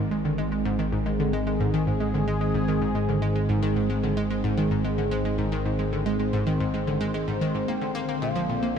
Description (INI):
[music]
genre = ambient, sequencer-driven space music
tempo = 111 BPM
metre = 4/4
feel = straight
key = unclear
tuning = A4 = 440 Hz
[part]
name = sweeping resonant pad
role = sustained chords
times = 0.0-8.8 s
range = D3 to D5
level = -27 LUFS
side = right 1 dB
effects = chorus, shimmer reverb
[part]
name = analog pluck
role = riff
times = 0.0-8.8 s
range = Ab2 to Bb3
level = -27 LUFS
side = equal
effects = chorus, shimmer reverb, ping-pong delay
[part]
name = fat analog bass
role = bass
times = 0.0-8.8 s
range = Ab1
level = -31 LUFS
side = left 1 dB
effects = none
[part]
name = expressive synth lead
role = melody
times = 7.7-8.8 s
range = F5 to G5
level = -33 LUFS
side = equal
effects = analog chorus, shimmer reverb, ping-pong delay
[sound]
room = moderate huge ambient reverb, RT60 8.6 s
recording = dreamy mix soaked in reverb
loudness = -23 LUFS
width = side -7 dB against mid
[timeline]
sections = 0.0-8.8 A section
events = none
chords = 0.0 Ab; 7.7 Bbadd9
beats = 0.12 0.66 | 1.20 1.74 2.28 2.82 | 3.36 3.90 4.44 4.98 | 5.52 6.06 6.60 7.14 | 7.68 8.22 8.76